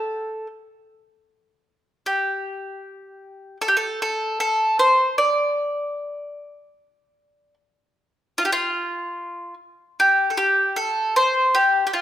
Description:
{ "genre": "chinese traditional", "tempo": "76 BPM", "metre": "4/4", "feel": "rubato", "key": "D yu mode", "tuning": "A4 = 440 Hz", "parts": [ { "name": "bowl-back mandolin", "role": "solo", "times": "0.0-12.0 s", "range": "F4 to D5", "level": "-19 LUFS", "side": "equal", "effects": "none" } ], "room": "moderate recital hall reverb, RT60 1.5 s", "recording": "minimal, uncompressed stereo recording", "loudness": "-19 LUFS", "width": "side -12 dB against mid", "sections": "0.0-8.4 A section; 8.4-12.0 B section", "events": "none", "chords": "none" }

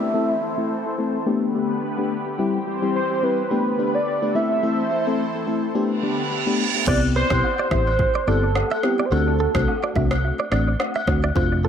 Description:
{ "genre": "afrobeats", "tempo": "107 BPM", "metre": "4/4", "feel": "swing 55% on 16ths", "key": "C major", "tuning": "A4 = 440 Hz", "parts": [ { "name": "warm velvety synth lead", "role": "melody", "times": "0.0-10.0 s", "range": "G4 to E5", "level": "-24 LUFS", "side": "right 2 dB", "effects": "chorus, low-pass filter, analog delay" }, { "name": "mellow FM electric piano", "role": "accompaniment", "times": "0.0-11.7 s", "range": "G3 to A4", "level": "-23 LUFS", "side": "left 3 dB", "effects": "chorus, low-pass filter, analog delay" }, { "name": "lush unison pad", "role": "sustained chords", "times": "0.0-6.9 s", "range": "D3 to C5", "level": "-28 LUFS", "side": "right 1 dB", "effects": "chorus, low-pass filter" }, { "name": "downlifter and reverse cymbal", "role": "sound effects", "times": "0.0-6.9 s", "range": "none", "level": "-28 LUFS", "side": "right 7 dB", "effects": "none" }, { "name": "direct-recorded clean electric guitar", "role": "riff", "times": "6.9-11.7 s", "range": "A4 to E5", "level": "-28 LUFS", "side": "right 6 dB", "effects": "analog delay" }, { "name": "vintage muted fingered electric bass", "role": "bass", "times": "6.9-11.7 s", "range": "F1 to D2", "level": "-22 LUFS", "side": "right 1 dB", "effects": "none" }, { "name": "afro-pop drum kit", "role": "drums", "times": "6.9-11.5 s", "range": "crash cymbal, kick drum, rim click", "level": "-25 LUFS", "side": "equal", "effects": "overdrive, analog delay" }, { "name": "agogo bells and woodblock", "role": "percussion", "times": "6.9-11.5 s", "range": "none", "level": "-29 LUFS", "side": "left 4 dB", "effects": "analog delay" } ], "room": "moderate spring reverb, RT60 2.7 s", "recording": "echo-heavy mix", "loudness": "-19 LUFS", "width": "side -8 dB against mid", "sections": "0.0-6.9 A section; 6.9-11.7 B section", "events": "filter sweep 0.0-6.9; reverse cymbal 6.0-6.9; hi-hats muted 6.9-11.7", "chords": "0.0 Am; 1.3 Gadd9; 2.4 C; 3.5 Gadd9; 4.3 Am; 5.7 Gadd9; 6.9 Cmaj7; 9.1 D7" }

